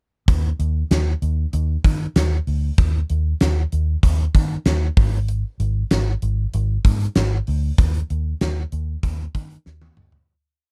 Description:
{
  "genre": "1980s-style pop",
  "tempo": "96 BPM",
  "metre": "4/4",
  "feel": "straight",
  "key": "unclear",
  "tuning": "A4 = 435 Hz",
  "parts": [
    { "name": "vintage muted fingered electric bass", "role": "bass", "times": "0.3-10.2 s", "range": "Ab1 to Eb3", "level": "-23 LUFS", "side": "equal", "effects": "none" },
    { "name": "gated 80s drum kit", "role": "drums", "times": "0.3-10.3 s", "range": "hi-hat, kick drum, snare drum, toms", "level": "-20 LUFS", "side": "equal", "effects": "none" }
  ],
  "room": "little or no reverb",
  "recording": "dark, warm production",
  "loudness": "-20 LUFS",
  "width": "mono",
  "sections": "0.3-10.3 chorus",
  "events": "fade-out 7.8-10.3; drum fill 9.7-10.3",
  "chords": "none",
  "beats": "| 0.28 0.91 1.53 2.16 | 2.78 3.41 4.03 4.66 | 5.28 5.91 6.53 7.16 | 7.78 8.41 9.03 9.66"
}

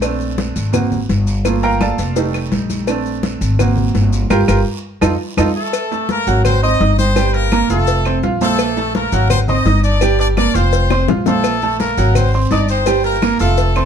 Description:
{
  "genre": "latin, salsa",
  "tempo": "168 BPM",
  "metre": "4/4",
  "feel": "straight",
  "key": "Bb major",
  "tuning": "A4 = 440 Hz",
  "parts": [
    { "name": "bright upright piano", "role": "accompaniment", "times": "0.0-13.9 s", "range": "Bb2 to F6", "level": "-18 LUFS", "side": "right 5 dB", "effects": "none" },
    { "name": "upright bass", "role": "bass", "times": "0.0-13.9 s", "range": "F1 to F2", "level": "-17 LUFS", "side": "left 1 dB", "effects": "none" },
    { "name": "claves", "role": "percussion", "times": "0.0-13.9 s", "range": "none", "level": "-29 LUFS", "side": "right 2 dB", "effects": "none" },
    { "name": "congas", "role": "percussion", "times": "0.0-13.9 s", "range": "none", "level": "-22 LUFS", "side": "left 2 dB", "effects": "none" },
    { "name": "cowbell and bongos", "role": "percussion", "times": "0.0-13.9 s", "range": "none", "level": "-24 LUFS", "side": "left 8 dB", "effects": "none" },
    { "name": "guiro", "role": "percussion", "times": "0.0-5.5, 11.4-13.9 s", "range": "none", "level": "-35 LUFS", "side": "right 5 dB", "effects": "none" },
    { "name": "maracas", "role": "percussion", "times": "0.0-13.9 s", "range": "none", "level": "-33 LUFS", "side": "left 9 dB", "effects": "none" },
    { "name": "brilliant horn section", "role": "melody", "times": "5.6-13.9 s", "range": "A3 to Eb5", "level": "-19 LUFS", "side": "left 1 dB", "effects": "none" }
  ],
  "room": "light reverb",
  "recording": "dark, warm production",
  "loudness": "-13 LUFS",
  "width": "side -8 dB against mid",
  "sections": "0.0-5.7 A section; 5.7-13.9 B section",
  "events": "upright piano solo 0.0-5.7; band accent 4.3-5.7; drum fill 10.9-11.4",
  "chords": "0.0 Bbmaj7; 0.7 Ab7; 1.5 Gm9; 2.2 F7; 2.9 Bbmaj7; 3.6 Ab7; 4.3 Gm7; 5.0 F7; 5.7 Gbmadd9; 6.4 Ab7; 7.2 Gm9; 7.9 F; 8.6 Bb5; 9.3 Ab7; 10.0 Gm7; 10.7 F; 11.4 Bb5; 12.2 Ab7; 12.9 Gm9",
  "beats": "| 0.02 0.38 0.74 1.09 | 1.45 1.81 2.17 2.52 | 2.88 3.24 3.59 3.95 | 4.31 4.67 5.02 5.38 | 5.74 6.09 6.45 6.81 | 7.16 7.52 7.88 8.23 | 8.59 8.95 9.30 9.66 | 10.02 10.37 10.73 11.09 | 11.44 11.80 12.15 12.51 | 12.87 13.22 13.58"
}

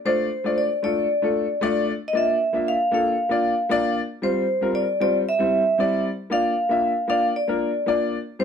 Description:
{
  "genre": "soul",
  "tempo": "115 BPM",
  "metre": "4/4",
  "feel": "straight",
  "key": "unclear",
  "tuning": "A4 = 440 Hz",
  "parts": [
    { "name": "vibraphone with medium hard mallets", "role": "melody", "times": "0.1-8.4 s", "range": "C5 to F5", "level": "-22 LUFS", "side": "equal", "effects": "none" },
    { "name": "clear upright piano", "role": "accompaniment", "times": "0.1-8.4 s", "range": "G3 to E5", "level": "-24 LUFS", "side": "left 3 dB", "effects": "none" }
  ],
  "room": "moderate studio reverb, RT60 0.6 s",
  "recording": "none",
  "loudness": "-20 LUFS",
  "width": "side -7 dB against mid",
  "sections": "0.0-8.4 A section",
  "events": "none",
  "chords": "0.1 Dm; 2.1 Bb; 4.2 Csus4; 5.3 C; 6.3 Bb",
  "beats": "| 0.06 0.58 1.10 1.62 | 2.14 2.66 3.18 3.70 | 4.22 4.74 5.26 5.79 | 6.31 6.83 7.35 7.87 | 8.39"
}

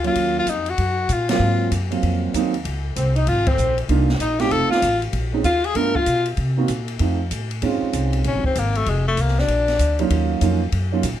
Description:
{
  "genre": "jazz, small-group swing and bop",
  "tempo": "193 BPM",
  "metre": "4/4",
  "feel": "swing 64% on 8ths",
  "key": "Bb minor",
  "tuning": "A4 = 440 Hz",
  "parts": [
    { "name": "clear tenor saxophone", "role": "melody", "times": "0.0-6.3, 8.3-10.1 s", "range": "Ab3 to Bb4", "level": "-21 LUFS", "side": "left 3 dB", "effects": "none" },
    { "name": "warm concert grand piano", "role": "accompaniment", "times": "0.0-11.0 s", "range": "Gb3 to Gb4", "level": "-22 LUFS", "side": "right 6 dB", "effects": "none" },
    { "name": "upright bass", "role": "bass", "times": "0.0-11.2 s", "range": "F1 to C3", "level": "-22 LUFS", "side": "equal", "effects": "none" },
    { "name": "open jazz drum kit", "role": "drums", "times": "0.0-11.1 s", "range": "hi-hat, kick drum, ride cymbal, snare drum", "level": "-28 LUFS", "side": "left 1 dB", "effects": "none" },
    { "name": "breathy alto saxophone", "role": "second line", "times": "3.0-6.3 s", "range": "C4 to Bb4", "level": "-26 LUFS", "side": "right 3 dB", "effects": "none" }
  ],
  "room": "light reverb",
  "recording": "none",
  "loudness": "-18 LUFS",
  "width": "side -11 dB against mid",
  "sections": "0.0-7.6 A section; 7.6-11.2 B section",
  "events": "band accent 1.2, 3.4; tenor saxophone solo 7.6-11.2",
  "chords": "0.2 Ebm9; 1.4 Ab13; 2.6 Db5; 3.9 Cm11; 4.5 F7; 5.1 Bbm11; 5.8 G7; 6.4 Cm7b5; 7.0 F7; 7.6 Bbm11 (rootless); 8.9 F5; 9.5 Bb; 10.1 Ebm9",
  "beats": "| 0.16 0.47 0.78 1.09 | 1.40 1.71 2.02 2.33 | 2.64 2.95 3.26 3.58 | 3.89 4.20 4.51 4.82 | 5.13 5.44 5.75 6.06 | 6.37 6.68 7.00 7.31 | 7.62 7.93 8.24 8.55 | 8.86 9.17 9.48 9.79 | 10.10 10.41 10.72 11.03"
}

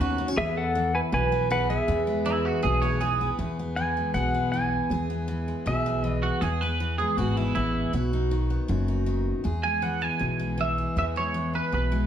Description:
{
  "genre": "honky-tonk and classic country",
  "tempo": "158 BPM",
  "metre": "4/4",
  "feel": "straight",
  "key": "E major",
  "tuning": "A4 = 439 Hz",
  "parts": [
    { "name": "twangy electric guitar", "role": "second line", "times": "0.0-3.3, 6.2-12.1 s", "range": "E4 to G#5", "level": "-28 LUFS", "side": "right 4 dB", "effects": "analog chorus, tape echo" },
    { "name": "picked steel-string acoustic guitar", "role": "accompaniment", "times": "0.0-12.1 s", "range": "E2 to G#4", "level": "-29 LUFS", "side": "left 2 dB", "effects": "none" },
    { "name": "upright bass", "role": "bass", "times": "0.0-12.1 s", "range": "F#1 to E2", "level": "-28 LUFS", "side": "equal", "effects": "none" },
    { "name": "pedal steel guitar", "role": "melody", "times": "0.4-6.2 s", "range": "G#4 to G#5", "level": "-27 LUFS", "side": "equal", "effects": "none" }
  ],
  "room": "wet large studio reverb, RT60 1.0 s",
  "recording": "heard from further back in the room",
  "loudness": "-24 LUFS",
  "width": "side -9 dB against mid",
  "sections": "0.0-3.4 A section; 3.4-9.4 B section; 9.4-12.1 C section",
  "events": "clean electric guitar solo 9.4-12.1",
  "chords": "0.4 E; 7.9 B; 9.4 E",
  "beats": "0.00 | 0.37 0.75 1.13 1.50 | 1.88 2.26 2.63 3.01 | 3.39 3.77 4.14 4.52 | 4.90 5.28 5.66 6.04 | 6.42 6.79 7.17 7.55 | 7.93 8.31 8.69 9.07 | 9.45 9.83 10.21 10.59 | 10.96 11.35 11.72"
}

